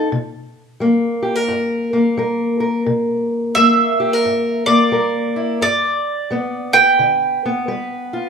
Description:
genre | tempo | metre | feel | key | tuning
acoustic country blues, solo or duo | 87 BPM | 4/4 | swing 63% on 8ths | C mixolydian | A4 = 441 Hz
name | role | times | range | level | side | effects
mandolin | melody | 0.0-8.3 s | D5 to G5 | -15 LUFS | right 3 dB | none
fingerpicked steel-string acoustic guitar | accompaniment | 0.0-8.3 s | G2 to B4 | -17 LUFS | left 1 dB | none
room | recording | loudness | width
wet large studio reverb, RT60 1.2 s | band playing live in one room | -15 LUFS | side -6 dB against mid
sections
0.0-8.3 A section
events
mandolin solo 0.0-8.3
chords
0.1 C7(no3); 5.6 G

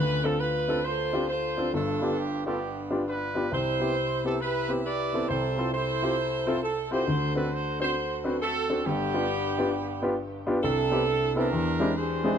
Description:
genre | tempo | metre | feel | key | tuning
gospel | 135 BPM | 4/4 | swing 64% on 8ths | C major | A4 = 440 Hz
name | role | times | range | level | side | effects
warm horn section | melody | 0.0-12.4 s | B3 to D5 | -28 LUFS | right 2 dB | tape echo
warm grand piano | accompaniment | 0.0-12.4 s | G1 to C5 | -28 LUFS | left 1 dB | none
room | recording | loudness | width
light reverb | dark, warm production | -25 LUFS | side -8 dB against mid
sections
0.0-10.6 A section; 10.6-12.4 B section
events
none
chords
0.0 Dm7; 1.7 G7; 3.5 Cmaj7; 5.3 Fmaj7/C; 7.1 D7; 8.9 G7; 10.6 Cmaj9; 11.5 E7alt

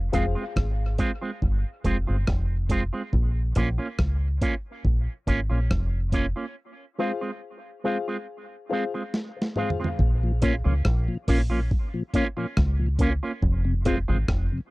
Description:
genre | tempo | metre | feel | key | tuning
dub reggae | 70 BPM | 4/4 | straight | Bb dorian | A4 = 440 Hz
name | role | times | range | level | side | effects
deep dub fingered electric bass | bass | 0.0-14.5 s | F1 to Db2 | -24 LUFS | equal | none
electric guitar with an envelope filter | accompaniment | 0.1-14.2 s | Ab3 to F4 | -30 LUFS | right 3 dB | dub echo
dark concert grand piano | stabs | 0.1-0.3, 7.0-9.8 s | F4 to F5 | -32 LUFS | left 5 dB | dub echo
dusty soul sampler-style drum kit | drums | 0.1-14.5 s | hi-hat, kick drum, rim click, snare drum, toms | -26 LUFS | equal | overdrive
mellow tonewheel organ | accompaniment | 10.2-14.6 s | F2 to F4 | -27 LUFS | left 3 dB | chorus vibrato, slow rotary speaker
room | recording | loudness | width
little or no reverb | dry, close 1970s-style studio recording | -23 LUFS | side -21 dB against mid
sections
0.0-10.0 A section; 10.0-14.7 B section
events
break 0.0-6.6, 6.6-10.0; drum fill 9.1-10.0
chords
0.0 Fm; 3.1 Bbm; 6.6 Fm; 10.0 Bbm; 13.4 Fm

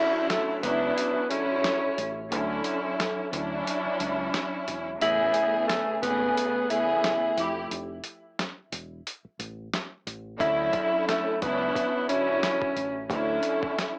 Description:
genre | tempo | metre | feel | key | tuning
hip hop, boom-bap hip-hop | 89 BPM | 4/4 | swing 56% on 16ths | D lydian | A4 = 441 Hz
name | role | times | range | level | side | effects
growling tenor saxophone | melody | 0.0-13.1 s | A3 to E4 | -29 LUFS | equal | high-pass filter, low-pass filter, cassette tape, plate reverb
warm studio string section | accompaniment | 0.0-14.0 s | C#3 to G#4 | -31 LUFS | equal | cassette tape, high-pass filter, low-pass filter, plate reverb
boom bap sampler-style drum kit | drums | 0.3-14.0 s | hi-hat, kick drum, snare drum | -35 LUFS | equal | overdrive, cassette tape
deep dub fingered electric bass | bass | 0.6-13.4 s | E1 to D2 | -40 LUFS | equal | none
room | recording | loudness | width
moderate small room reverb, RT60 0.5 s | home recording on cassette, small speaker sound | -27 LUFS | mono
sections
0.0-14.0 A section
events
break 0.0-10.4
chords
0.0 Dmaj9; 5.0 Amaj9; 7.4 Fmaj7; 10.4 Dmaj9

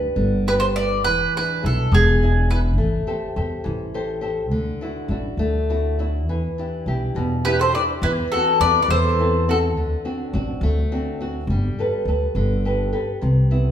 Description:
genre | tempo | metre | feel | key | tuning
italian folk, Italian serenade | 69 BPM (dotted quarters) | 6/8 | straight | G major | A4 = 440 Hz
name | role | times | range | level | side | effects
flamenco guitar | accompaniment | 0.0-13.7 s | B2 to C5 | -24 LUFS | equal | none
upright bass | bass | 0.0-13.7 s | E1 to E2 | -21 LUFS | equal | none
mandolin | melody | 0.5-2.6, 7.4-9.6 s | G#4 to D5 | -20 LUFS | left 1 dB | none
mandolin | second line | 7.4-9.6 s | E4 to B4 | -26 LUFS | right 4 dB | none
room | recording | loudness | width
wet large studio reverb, RT60 1.3 s | band playing live in one room | -18 LUFS | side -9 dB against mid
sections
0.0-13.2 A section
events
none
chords
0.0 G; 1.1 E7; 2.8 Am7; 4.5 Dadd9; 6.3 Em7; 8.0 Am/E; 9.8 D7; 11.5 Gadd9

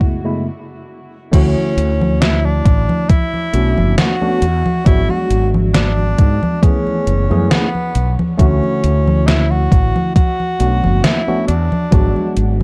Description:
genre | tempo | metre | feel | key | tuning
vaporwave | 68 BPM | 4/4 | swing 54% on 16ths | unclear | A4 = 440 Hz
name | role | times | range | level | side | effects
breathy tenor saxophone | melody | 0.0-12.5 s | B3 to F#4 | -24 LUFS | equal | tape echo
tine electric piano | accompaniment | 0.0-12.6 s | F#2 to C#5 | -23 LUFS | equal | overdrive, lush chorus
electronic kick drum | drums | 0.0-12.1 s | none | -14 LUFS | equal | overdrive
mellow fretless electric bass | bass | 1.3-12.6 s | F#1 to G#2 | -18 LUFS | equal | tube saturation
gated 80s digital drum machine | drums | 1.3-12.6 s | congas, crash cymbal, hi-hat, snare drum | -21 LUFS | equal | gated reverb, gated reverb snare, overdrive
room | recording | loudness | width
digital ambience | dark, warm production, cassette tape | -15 LUFS | mono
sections
0.0-1.3 A section; 1.3-12.6 B section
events
stop 0.5-1.3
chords
0.0 F#m11; 1.3 Dmaj9; 3.1 Bm7; 4.9 G#m7b5; 6.6 F#m11; 8.4 Dmaj9; 10.2 Bm7; 11.9 G#m7b5

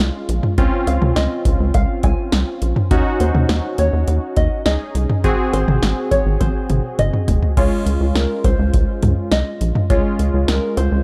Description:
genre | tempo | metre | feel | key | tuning
synth-pop | 103 BPM | 4/4 | straight | Db major | A4 = 439 Hz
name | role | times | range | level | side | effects
open-back banjo | melody | 0.0-11.0 s | Bb4 to Ab5 | -27 LUFS | equal | analog delay
warm analog keys | accompaniment | 0.0-11.0 s | Ab3 to Ab4 | -25 LUFS | equal | chorus
rubbery square bass | bass | 0.0-11.0 s | F1 to Eb2 | -21 LUFS | equal | none
electro analog drum machine | drums | 0.0-10.9 s | crash cymbal, hi-hat, kick drum, snare drum, toms | -21 LUFS | equal | none
room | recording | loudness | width
little or no reverb | dry, gritty hardware recording | -18 LUFS | mono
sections
0.0-7.6 A section; 7.6-11.0 B section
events
drum fill 6.4-7.6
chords
0.0 Dbmaj7; 2.9 Ebm7; 5.2 Ab7; 7.6 Dbmaj7

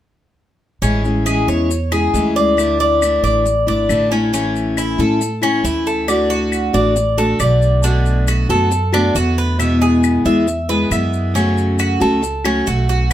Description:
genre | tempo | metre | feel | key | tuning
latin, Cuban son and guajira | 137 BPM | 4/4 | straight | A major | A4 = 440 Hz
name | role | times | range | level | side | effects
picked steel-string acoustic guitar | accompaniment | 0.8-13.1 s | B2 to F#4 | -18 LUFS | left 1 dB | none
Cuban tres | arpeggios | 0.8-13.1 s | C#4 to E5 | -18 LUFS | equal | none
upright bass | bass | 0.8-13.1 s | G#1 to A2 | -19 LUFS | right 1 dB | none
maracas | percussion | 0.8-13.1 s | none | -30 LUFS | left 7 dB | none
claves | percussion | 1.3-13.1 s | none | -26 LUFS | left 8 dB | none
room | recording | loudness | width
moderate small room reverb, RT60 0.5 s | none | -14 LUFS | side -12 dB against mid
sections
0.8-4.3 A section; 4.3-13.1 B section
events
none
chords
0.8 Amaj7; 2.6 Dsus2; 4.3 A; 6.1 D; 7.8 Bm7; 9.6 E; 11.4 F#m

